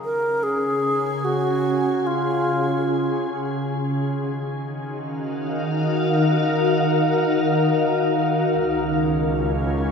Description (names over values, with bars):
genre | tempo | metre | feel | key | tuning
ambient | free time | none | none | Db major | A4 = 439 Hz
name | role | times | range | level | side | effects
wooden-headed alto flute | melody | 0.0-3.3 s | F4 to Bb4 | -23 LUFS | equal | diffuse ambient delay
glassy FM pad | sustained chords | 0.0-9.9 s | Db3 to Ab5 | -21 LUFS | left 1 dB | ensemble chorus, built-in reverb
clear studio double bass section | bass | 8.6-9.9 s | Db2 | -27 LUFS | equal | none
room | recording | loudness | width
wet lush hall reverb, RT60 2.6 s | dreamy mix soaked in reverb | -19 LUFS | side -6 dB against mid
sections
0.0-8.6 A section; 8.6-9.9 B section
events
fade-in on ambient pad 0.0-8.6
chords
0.0 Db; 3.7 Ebmadd9; 8.6 Db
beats
free time